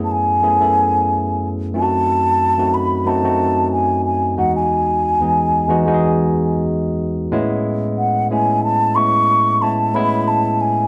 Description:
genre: soul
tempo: 91 BPM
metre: 4/4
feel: swing 54% on 16ths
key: unclear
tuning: A4 = 441 Hz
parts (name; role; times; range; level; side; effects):
- mellow hollow concert flute; melody; 0.0-10.9 s; F#5 to C#6; -19 LUFS; equal; none
- barky tine electric piano; accompaniment; 0.0-10.9 s; E2 to A4; -20 LUFS; equal; none
room: moderate large studio reverb, RT60 0.9 s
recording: band playing live in one room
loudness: -17 LUFS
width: mono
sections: 0.0-7.3 A section; 7.3-10.9 B section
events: none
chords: 0.0 F#m11; 1.7 F#dim7; 4.4 Emaj7; 7.3 Amaj7

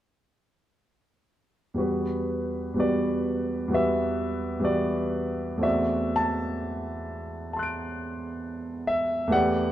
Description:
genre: classical, impressionist solo piano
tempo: 56-68 BPM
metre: 4/4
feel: rubato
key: E minor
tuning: A4 = 443 Hz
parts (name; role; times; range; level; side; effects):
- clear concert grand piano; solo; 1.7-9.7 s; E2 to D7; -25 LUFS; equal; none
room: moderate recital hall reverb, RT60 1.4 s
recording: dark, warm production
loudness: -25 LUFS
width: side -12 dB against mid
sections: 1.8-9.7 A section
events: none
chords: 1.8 Em9; 5.6 D9/E

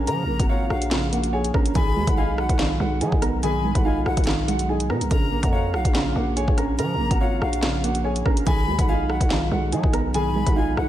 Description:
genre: hip hop, drill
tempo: 143 BPM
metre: 4/4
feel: half-time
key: Bb phrygian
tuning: A4 = 441 Hz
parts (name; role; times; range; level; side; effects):
- dark baby grand piano; melody; 0.0-10.9 s; F4 to Bb5; -28 LUFS; left 1 dB; analog chorus, tape echo
- felt-muted upright piano; accompaniment; 0.0-10.9 s; Db3 to Db5; -27 LUFS; right 4 dB; none
- growling 808-style bass; bass; 0.0-10.9 s; Ab1 to F#3; -25 LUFS; equal; none
- mellow jazz flute; second line; 0.1-10.9 s; F5 to B5; -32 LUFS; left 4 dB; tape echo
- drill drum kit; drums; 0.1-10.9 s; handclaps, hi-hat, kick drum, rim click, snare drum; -23 LUFS; equal; vintage 12-bit sampler grit
room: light reverb, small room ambience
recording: none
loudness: -19 LUFS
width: side -12 dB against mid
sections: 0.0-10.9 A section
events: none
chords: 0.0 Bbm; 1.8 B6; 5.1 Bbm; 8.5 B6

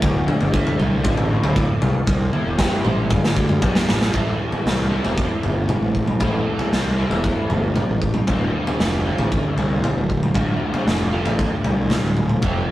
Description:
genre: psychedelic rock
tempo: 116 BPM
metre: 4/4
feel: straight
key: D minor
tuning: A4 = 440 Hz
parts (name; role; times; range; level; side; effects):
- overdriven semi-hollow guitar; riff; 0.0-12.7 s; D2 to C5; -23 LUFS; equal; rotary speaker
- fuzz fingered electric bass; bass; 0.0-12.6 s; D1 to D2; -23 LUFS; equal; overdrive
- raw garage drum kit; drums; 0.0-12.5 s; kick drum, snare drum, toms; -20 LUFS; equal; none
room: light reverb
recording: rough rehearsal-room recording, tube saturation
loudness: -17 LUFS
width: side -15 dB against mid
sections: 0.0-4.1 A section; 4.1-12.7 B section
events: drum fill 2.1-4.1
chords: 0.0 Dm; 1.8 C; 3.1 G; 4.1 Am; 8.3 Dm7

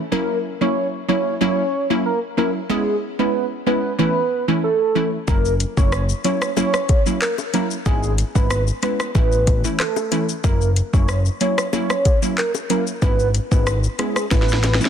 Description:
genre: dancehall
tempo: 93 BPM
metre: 4/4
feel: straight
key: unclear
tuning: A4 = 441 Hz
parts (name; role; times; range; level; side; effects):
- warm velvety synth lead; melody; 0.1-14.8 s; G#4 to C#5; -22 LUFS; right 1 dB; chorus, tremolo, ping-pong delay
- wavetable chord stab; accompaniment; 0.1-14.9 s; E3 to E4; -22 LUFS; right 2 dB; sidechain pumping
- fat analog bass; bass; 5.3-14.8 s; F#1 to A1; -20 LUFS; equal; none
- afro-pop drum kit; drums; 5.3-14.9 s; handclaps, hi-hat, kick drum, rim click, shaker, snare drum; -20 LUFS; equal; vintage 12-bit sampler grit, soft clipping on snare
- bongos; percussion; 5.3-14.8 s; none; -31 LUFS; left 10 dB; none
room: digital ambience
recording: dense, heavily limited modern master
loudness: -17 LUFS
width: side -8 dB against mid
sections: 0.0-14.9 A section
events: drum fill 14.3-14.9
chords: 0.1 F#7; 2.7 C#m7/G#; 4.0 A; 5.3 F#7; 7.9 C#m7/G#; 9.2 A; 10.4 F#7; 13.0 C#m7/G#; 14.3 A

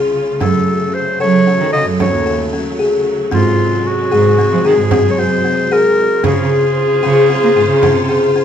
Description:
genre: contemporary instrumental, chamber music in an uneven meter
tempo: 226 BPM (eighths)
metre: 11/8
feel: straight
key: Db major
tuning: A4 = 439 Hz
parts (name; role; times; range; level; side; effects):
- dark studio string section; sustained chords; 0.0-8.4 s; C3 to C5; -22 LUFS; right 2 dB; none
- buzzing kalimba; arpeggios; 0.0-8.4 s; C4 to A4; -15 LUFS; left 3 dB; none
- clear clarinet; melody; 0.4-8.4 s; F4 to Eb5; -16 LUFS; left 1 dB; none
- dark cello; bass; 0.4-8.2 s; Eb2 to Bb3; -17 LUFS; right 4 dB; none
- frame drum; percussion; 0.4-8.1 s; none; -21 LUFS; right 4 dB; none
room: light reverb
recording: minimal, uncompressed stereo recording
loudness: -11 LUFS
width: side -8 dB against mid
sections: 0.0-8.4 A section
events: none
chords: 0.4 Gbm; 3.3 Ab7; 6.2 Dbmaj7

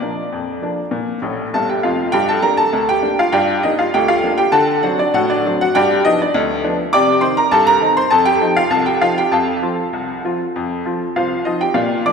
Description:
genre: ragtime piano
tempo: 100 BPM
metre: 2/4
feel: straight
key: unclear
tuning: A4 = 440 Hz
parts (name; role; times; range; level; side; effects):
- bright upright piano; solo; 0.0-12.1 s; F1 to D6; -14 LUFS; equal; none
room: wet concert hall reverb, RT60 2.1 s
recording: recorded in a church or concert hall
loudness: -14 LUFS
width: side -6 dB against mid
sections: 0.0-2.1 A section; 2.1-11.8 A section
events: upright piano fill 1.2-2.1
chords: 0.0 Bb; 2.1 Gm; 4.5 D7; 5.7 G7; 6.9 Cm; 8.1 F7

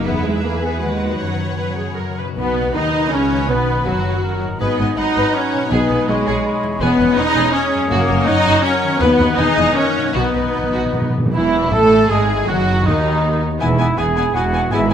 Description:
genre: classical, dramatic, fast romantic movement for symphony orchestra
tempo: 161 BPM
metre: 3/4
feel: rubato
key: B major, E major from 11.3 s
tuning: A4 = 440 Hz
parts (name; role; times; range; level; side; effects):
- warm symphonic violin section; melody; 0.0-14.9 s; B3 to G#5; -26 LUFS; left 3 dB; none
- rich symphonic violin section; second line; 0.0-14.9 s; D#4 to D#5; -27 LUFS; left 1 dB; none
- rich symphonic viola section; accompaniment; 0.0-14.9 s; D#3 to B4; -20 LUFS; equal; none
- concert harp; arpeggios; 0.0-14.9 s; E2 to B5; -27 LUFS; left 7 dB; none
- rich symphonic cello section; bass; 0.0-14.9 s; D#2 to B3; -24 LUFS; right 2 dB; none
- rich symphonic double bass section; bass; 0.0-14.9 s; E1 to F#2; -23 LUFS; right 3 dB; none
- small flute group; second line; 2.4-14.9 s; C#4 to B5; -28 LUFS; equal; none
- warm clarinet; second line; 2.4-14.9 s; F#3 to F#5; -27 LUFS; equal; none
- warm French horn section; sustained chords; 2.4-14.9 s; D#3 to G#4; -25 LUFS; left 3 dB; none
- warm oboe; second line; 2.7-14.9 s; D#4 to G#5; -26 LUFS; right 1 dB; none
- timpani; percussion; 5.7-11.3 s; F#2 to B2; -25 LUFS; right 1 dB; none
- warm trumpet section; stabs; 11.3-14.9 s; D#4 to A4; -20 LUFS; right 2 dB; none
room: moderate scoring stage reverb, RT60 1.5 s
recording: none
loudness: -14 LUFS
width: side -8 dB against mid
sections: 0.0-2.4 A section; 2.4-11.3 B section; 11.3-14.9 C section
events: timpani fill 10.2-11.3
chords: 0.1 E; 0.8 B/D#; 1.2 F#sus4; 2.0 F#; 2.4 B; 4.6 G#m7; 5.7 G#m/B; 6.8 C#m7/E; 7.9 F#; 9.0 B/D#; 9.4 Emaj7; 9.8 F#69; 10.2 B; 11.3 E; 12.5 B/F#; 13.6 E

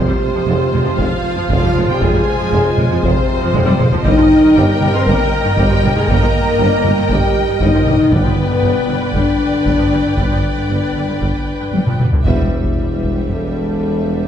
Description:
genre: cinematic, epic orchestral film score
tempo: 117 BPM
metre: 4/4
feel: straight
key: unclear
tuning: A4 = 440 Hz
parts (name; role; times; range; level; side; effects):
- clear symphonic violin section; melody; 0.0-14.3 s; B4 to C6; -26 LUFS; left 2 dB; none
- rich symphonic violin section; second line; 0.0-14.3 s; B4 to G5; -24 LUFS; left 3 dB; none
- clear symphonic viola section; accompaniment; 0.0-14.3 s; D3 to B4; -23 LUFS; equal; none
- bright trombone section; sustained chords; 0.0-11.7 s; B2 to C4; -23 LUFS; right 4 dB; none
- dark French horn section; sustained chords; 0.0-14.3 s; B3 to C5; -18 LUFS; left 2 dB; none
- rich studio double bass section; bass; 0.0-14.3 s; E1 to G1; -22 LUFS; right 2 dB; none
- warm tuba; bass; 0.0-14.3 s; E1 to G1; -23 LUFS; right 2 dB; none
- rich symphonic cello section; bass; 0.1-14.3 s; E2 to G2; -22 LUFS; right 2 dB; none
- taiko ensemble; drums; 0.7-13.8 s; none; -19 LUFS; equal; none
- timpani; percussion; 8.1-8.9, 12.3-13.0 s; E2 to G2; -24 LUFS; equal; none
room: wet recital hall reverb, RT60 1.5 s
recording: heard from further back in the room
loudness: -12 LUFS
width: side -9 dB against mid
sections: 0.0-12.3 A section; 12.3-14.3 B section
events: drum fill 3.5-4.1, 11.7-12.3; band accent 12.3-12.8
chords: 0.0 Fm; 4.1 Eb/G; 8.1 G; 12.3 Em

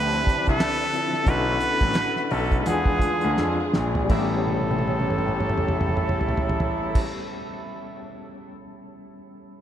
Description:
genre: R&B, neo-soul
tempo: 80-92 BPM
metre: 4/4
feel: swing 61% on 16ths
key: unclear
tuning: A4 = 440 Hz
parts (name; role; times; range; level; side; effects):
- trumpet with straight mute; melody; 0.0-7.0 s; G#4 to B4; -27 LUFS; equal; ping-pong delay
- overdriven tine electric piano; accompaniment; 0.0-9.6 s; F3 to A4; -30 LUFS; left 3 dB; fast tremolo
- dark studio string section; sustained chords; 0.0-7.0 s; D3 to E5; -32 LUFS; right 1 dB; none
- warm horn section; stabs; 0.0-7.0 s; C#3 to G4; -34 LUFS; right 3 dB; none
- warm concert grand piano; bass; 0.0-7.0 s; A1 to F2; -28 LUFS; left 1 dB; none
- cloth-damped thuddy drum kit; drums; 0.3-8.6 s; crash cymbal, handclaps, hi-hat, kick drum, snare drum, toms; -26 LUFS; right 1 dB; none
room: moderate cathedral reverb, RT60 7.0 s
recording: dreamy mix soaked in reverb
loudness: -21 LUFS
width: side -10 dB against mid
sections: 0.0-4.1 A section; 4.1-7.1 B section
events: slowing down 0.0-4.1; drum fill 3.4-4.1, 4.5-6.9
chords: 0.0 Dm9; 1.3 Bm7; 2.6 E7b9; 4.1 A7

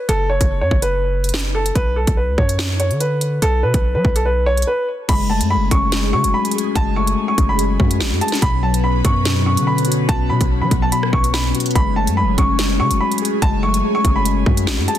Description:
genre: hip hop, drill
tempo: 144 BPM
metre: 4/4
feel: half-time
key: F# minor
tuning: A4 = 439 Hz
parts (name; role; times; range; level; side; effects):
- warm upright piano; melody; 0.0-15.0 s; A4 to C#6; -21 LUFS; right 1 dB; ping-pong delay
- hard-hitting 808-style bass; bass; 0.1-14.9 s; F#1 to F#3; -20 LUFS; equal; none
- drill drum kit; drums; 0.1-15.0 s; crash cymbal, hi-hat, kick drum, rim click, snare drum; -20 LUFS; equal; none
- mellow tine electric piano; accompaniment; 5.1-15.0 s; B2 to G#4; -21 LUFS; left 7 dB; none
- airy breathy pad; sustained chords; 5.1-15.0 s; F#3 to B4; -25 LUFS; right 1 dB; chorus, phaser
room: little or no reverb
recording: dense, heavily limited modern master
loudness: -15 LUFS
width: side -11 dB against mid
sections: 0.0-5.1 A section; 5.1-15.0 B section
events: break 4.7-5.1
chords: 0.0 F#5; 1.8 Bsus2; 5.1 F#madd9; 8.4 Bsus2; 11.8 F#madd9

